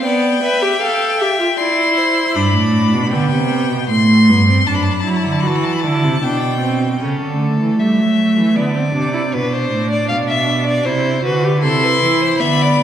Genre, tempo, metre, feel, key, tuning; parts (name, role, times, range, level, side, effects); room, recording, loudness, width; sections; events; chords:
classical, baroque-style fugue for string quartet; 78 BPM; 3/4; straight; C major; A4 = 440 Hz
warm violin; melody; 0.0-7.0, 11.6-12.8 s; G5 to C6; -18 LUFS; left 3 dB
warm violin; second line; 0.0-2.4, 7.0-12.8 s; A4 to F5; -20 LUFS; left 2 dB
warm viola; accompaniment; 0.0-12.8 s; A3 to B4; -18 LUFS; right 1 dB
warm cello; bass; 2.4-12.8 s; F#2 to G3; -17 LUFS; right 2 dB
wet scoring stage reverb, RT60 1.5 s; recorded in a church or concert hall; -13 LUFS; side -10 dB against mid
0.0-7.0 A section; 7.0-12.8 B section
0.1 G7/B; 1.6 C/E; 2.4 G; 3.9 Am7; 4.7 D7/F#; 6.2 G/B; 7.0 A7/C#; 8.6 Cmaj7sus2; 9.3 D7sus2/A; 10.9 C; 11.6 Am/C